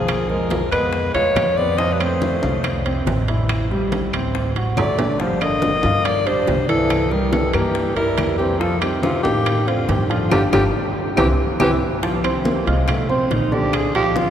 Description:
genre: Afro-Cuban jazz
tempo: 141 BPM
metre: 4/4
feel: straight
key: unclear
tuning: A4 = 438 Hz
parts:
  - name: bright alto saxophone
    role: melody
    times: 0.0-11.7 s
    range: F4 to Eb5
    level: -22 LUFS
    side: left 2 dB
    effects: none
  - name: growling tenor saxophone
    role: second line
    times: 0.0-14.3 s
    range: C3 to Ab4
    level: -25 LUFS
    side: right 2 dB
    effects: none
  - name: warm grand piano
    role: accompaniment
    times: 0.0-14.3 s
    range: D3 to F6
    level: -23 LUFS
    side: equal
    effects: none
  - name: upright bass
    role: bass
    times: 0.0-14.3 s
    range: G1 to A2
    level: -23 LUFS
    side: equal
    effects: none
  - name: bongos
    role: percussion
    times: 0.1-14.3 s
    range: none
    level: -31 LUFS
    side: left 4 dB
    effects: none
  - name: claves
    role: percussion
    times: 0.1-13.9 s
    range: none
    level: -35 LUFS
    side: left 2 dB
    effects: none
  - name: congas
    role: percussion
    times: 0.1-14.3 s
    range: none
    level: -27 LUFS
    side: equal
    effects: none
  - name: timbales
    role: percussion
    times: 0.1-14.2 s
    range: none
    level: -29 LUFS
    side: right 5 dB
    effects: none
room: wet cathedral reverb, RT60 7.0 s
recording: recorded in a church or concert hall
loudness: -17 LUFS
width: side -9 dB against mid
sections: 0.0-12.0 A section; 12.0-14.3 B section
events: drum fill 4.8-5.2, 11.8; band accent 10.3-12.0; tenor saxophone solo 12.0-14.3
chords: 0.1 E(b9b13) (rootless); 1.8 F; 3.5 Am7; 4.3 D7; 5.2 Gm7; 6.9 C7; 8.6 F7; 10.3 G5; 11.2 C; 12.0 F5; 13.7 Bb7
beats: | 0.09 0.51 0.94 1.36 | 1.79 2.22 2.64 3.07 | 3.50 3.92 4.35 4.77 | 5.20 5.62 6.05 6.48 | 6.90 7.33 7.76 8.18 | 8.61 9.04 9.46 9.89 | 10.32 10.74 11.17 11.60 | 12.03 12.45 12.88 13.31 | 13.74 14.16

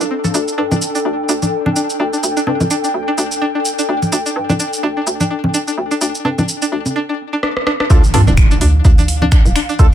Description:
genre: minimal techno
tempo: 127 BPM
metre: 4/4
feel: swing 57% on 16ths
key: D minor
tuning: A4 = 442 Hz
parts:
  - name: string-like resonator pluck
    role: riff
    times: 0.0-9.7 s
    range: C4 to A4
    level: -20 LUFS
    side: equal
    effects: chorus, sidechain pumping, ping-pong delay
  - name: hollow knocking FM bass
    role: bass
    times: 0.0-9.9 s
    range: D1 to G2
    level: -17 LUFS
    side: equal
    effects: tube saturation, sidechain pumping, high-pass filter
  - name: booming analog drum machine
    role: drums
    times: 0.0-9.9 s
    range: finger snaps, hi-hat, rim click, shaker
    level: -21 LUFS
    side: right 1 dB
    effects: none
  - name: airy breathy pad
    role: texture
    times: 0.0-9.9 s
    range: D4 to G5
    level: -21 LUFS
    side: left 1 dB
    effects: chorus, sidechain pumping
  - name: congas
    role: percussion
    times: 0.2-9.3 s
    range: none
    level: -19 LUFS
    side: equal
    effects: none
  - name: percussive organ stab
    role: stabs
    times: 7.9-9.9 s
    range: D4 to A4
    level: -22 LUFS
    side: right 2 dB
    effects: lush chorus, dub echo
  - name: electronic kick drum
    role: drums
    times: 7.9-9.9 s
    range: none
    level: -9 LUFS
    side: equal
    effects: none
  - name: impact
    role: sound effects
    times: 7.9-9.8 s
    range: none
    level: -20 LUFS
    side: equal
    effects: none
room: light reverb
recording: none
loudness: -13 LUFS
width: side -10 dB against mid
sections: 0.0-7.9 A section; 7.9-9.9 B section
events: filter sweep on drum 0.0-7.9; drum fill 7.4-7.9; drop 7.9-9.9; impact 7.9-9.8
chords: 0.0 D5; 7.9 Dm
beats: | 0.34 0.82 1.29 1.76 | 2.23 2.71 3.18 3.65 | 4.12 4.59 5.07 5.54 | 6.01 6.49 6.96 7.43 | 7.90 8.38 8.85 9.32 | 9.79

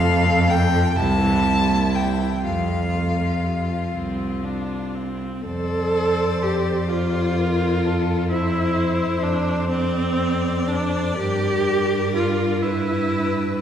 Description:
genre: classical, slow romantic movement for string quartet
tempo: 41 BPM (dotted quarters)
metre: 6/8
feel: uneven beats, rubato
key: F major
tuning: A4 = 440 Hz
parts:
  - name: warm violin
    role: melody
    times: 0.0-13.6 s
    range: E4 to D5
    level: -30 LUFS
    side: left 7 dB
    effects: none
  - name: rich violin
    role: second line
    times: 0.0-13.6 s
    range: A4 to A5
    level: -27 LUFS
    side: left 2 dB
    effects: none
  - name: rich viola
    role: accompaniment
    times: 0.0-13.6 s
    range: C3 to A4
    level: -24 LUFS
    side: equal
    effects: none
  - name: rich cello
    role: bass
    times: 0.0-13.6 s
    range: C2 to G2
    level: -22 LUFS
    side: right 2 dB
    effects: none
room: wet concert hall reverb, RT60 2.0 s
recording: heard from further back in the room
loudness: -19 LUFS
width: side -9 dB against mid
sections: 0.0-5.5 A section; 5.5-13.6 B section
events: none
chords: 0.0 F; 1.0 C7; 2.4 F5; 5.5 F; 8.3 Dm9/F; 11.2 Gm; 12.6 G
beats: 0.97 | 2.44 3.94 | 5.46 6.91 | 8.31 9.70 | 11.18 12.63

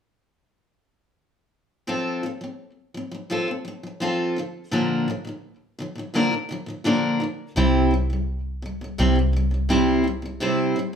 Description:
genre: pop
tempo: 84 BPM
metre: 4/4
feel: straight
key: F major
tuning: A4 = 440 Hz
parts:
  - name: picked steel-string acoustic guitar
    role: accompaniment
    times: 1.9-11.0 s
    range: Bb2 to C5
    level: -22 LUFS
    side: equal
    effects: none
  - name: vintage muted fingered electric bass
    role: bass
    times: 7.6-10.4 s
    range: C2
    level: -23 LUFS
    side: equal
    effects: none
room: moderate large studio reverb, RT60 0.9 s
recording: band playing live in one room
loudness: -21 LUFS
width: side -7 dB against mid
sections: 1.9-11.0 A section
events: none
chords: 1.9 F; 4.4 Bb; 7.6 C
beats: | 1.88 2.59 3.30 4.01 | 4.72 5.43 6.15 6.86 | 7.57 8.28 8.99 9.70 | 10.41

